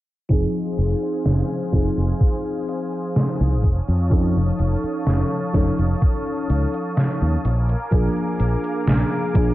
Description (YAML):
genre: vaporwave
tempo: 63 BPM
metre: 4/4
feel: straight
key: unclear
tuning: A4 = 442 Hz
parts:
  - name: mellow FM electric piano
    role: accompaniment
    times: 0.3-9.5 s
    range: F3 to A4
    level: -24 LUFS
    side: equal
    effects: lush chorus, analog delay
  - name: lush unison pad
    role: sustained chords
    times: 0.3-9.5 s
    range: Bb4 to Eb6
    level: -31 LUFS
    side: equal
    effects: chorus
  - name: fretless electric bass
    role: bass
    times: 0.3-9.5 s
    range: F1 to F2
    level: -20 LUFS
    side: equal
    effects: wide subtle chorus
  - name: detuned 8-bit digital drum machine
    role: drums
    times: 0.3-9.5 s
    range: hi-hat, snare drum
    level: -22 LUFS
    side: equal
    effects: none
  - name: electronic kick drum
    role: drums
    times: 0.3-9.5 s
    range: none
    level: -19 LUFS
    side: equal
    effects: none
room: digital ambience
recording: cassette tape, low-pass filter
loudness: -18 LUFS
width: side -16 dB against mid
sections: 0.3-9.5 A section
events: filter sweep 0.3-9.5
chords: 0.3 Fm7; 3.6 Faug7; 7.4 Bb7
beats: | 0.30 1.26 2.21 3.16 | 4.11 5.07 6.02 6.97 | 7.92 8.88